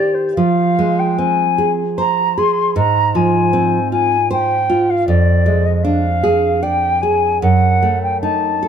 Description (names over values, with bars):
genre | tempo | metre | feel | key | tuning
romantic duo for flute and classical guitar | 76 BPM | 3/4 | rubato | unclear | A4 = 440 Hz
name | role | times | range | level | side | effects
concert flute | melody | 0.0-8.7 s | C5 to C6 | -17 LUFS | left 2 dB | none
nylon-string guitar | accompaniment | 0.0-8.7 s | F2 to D5 | -15 LUFS | right 2 dB | none
room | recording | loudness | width
light reverb | close, detailed microphones | -13 LUFS | side -8 dB against mid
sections
0.0-8.7 A section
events
none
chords
0.4 Fm; 2.8 Fm/Ab; 5.1 Ddim/F; 7.4 F#m6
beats
| 0.37 1.19 1.99 | 2.77 3.54 4.32 | 5.08 5.85 6.64 | 7.43 8.23